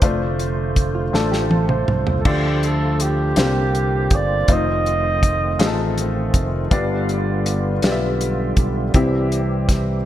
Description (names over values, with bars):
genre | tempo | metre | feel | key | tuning
slow gospel | 54 BPM (dotted quarters) | 6/8 | straight | F major | A4 = 440 Hz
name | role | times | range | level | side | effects
warm upright piano | accompaniment | 0.0-10.1 s | G2 to E5 | -24 LUFS | left 4 dB | none
percussive tonewheel organ | sustained chords | 0.0-10.1 s | D3 to C5 | -25 LUFS | right 2 dB | slow rotary speaker, chorus vibrato
fingered electric bass | bass | 0.0-10.0 s | F1 to D2 | -22 LUFS | equal | none
warm soul drum kit | drums | 0.0-9.9 s | crash cymbal, hi-hat, kick drum, snare drum, toms | -19 LUFS | equal | none
mellow electric guitar | second line | 0.9-2.2 s | F4 to C5 | -28 LUFS | right 9 dB | none
dark trumpet | melody | 2.2-6.0 s | G4 to Eb5 | -22 LUFS | right 3 dB | none
room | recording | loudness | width
light reverb, small room ambience | bright 1980s-style digital production | -17 LUFS | side -12 dB against mid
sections
0.0-2.3 A section; 2.3-10.1 B section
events
drum fill 1.1-2.3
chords
0.0 F6; 2.3 Dm; 3.4 C9sus4; 4.5 F7; 6.7 G7; 8.9 C